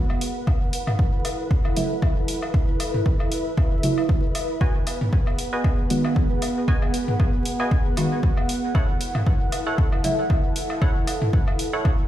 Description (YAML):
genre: dub techno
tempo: 116 BPM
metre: 4/4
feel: swing 55% on 16ths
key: unclear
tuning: A4 = 436 Hz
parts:
  - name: dark analog pad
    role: sustained chords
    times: 0.0-12.1 s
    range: B3 to F#5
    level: -29 LUFS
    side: right 1 dB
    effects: chorus, sidechain pumping
  - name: flickering grainy texture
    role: texture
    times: 0.0-12.1 s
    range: B4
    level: -35 LUFS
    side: left 1 dB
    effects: built-in reverb, sidechain pumping
  - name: electronic woodblock and toms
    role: percussion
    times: 0.1-12.0 s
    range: none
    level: -30 LUFS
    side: left 1 dB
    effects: overdrive, sidechain pumping on perc, sidechain pumping on toms, dub echo
  - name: electronic hi-hat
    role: drums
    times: 0.2-11.7 s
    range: none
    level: -33 LUFS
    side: equal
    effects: overdrive
  - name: electronic kick drum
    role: drums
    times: 0.5-12.0 s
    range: none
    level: -21 LUFS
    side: equal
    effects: overdrive
  - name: deep mellow chord stab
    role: stabs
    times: 1.8-10.1 s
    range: C#3 to F#4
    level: -26 LUFS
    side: right 1 dB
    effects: chorus, phaser, sidechain pumping, dub echo
  - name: wavetable chord stab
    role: riff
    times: 4.6-11.9 s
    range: E4 to G#5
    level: -31 LUFS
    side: right 1 dB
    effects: sidechain pumping, dub echo
room: light reverb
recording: played on a big sound system in a bare room, stone room reverb, vinyl crackle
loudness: -20 LUFS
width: side -12 dB against mid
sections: 0.0-12.1 A section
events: none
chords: 0.5 F#m7; 4.6 G#m7; 8.7 F#m7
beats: | 0.47 0.99 1.51 2.02 | 2.54 3.06 3.58 4.09 | 4.61 5.13 5.64 6.16 | 6.68 7.20 7.71 8.23 | 8.75 9.27 9.78 10.30 | 10.82 11.33 11.85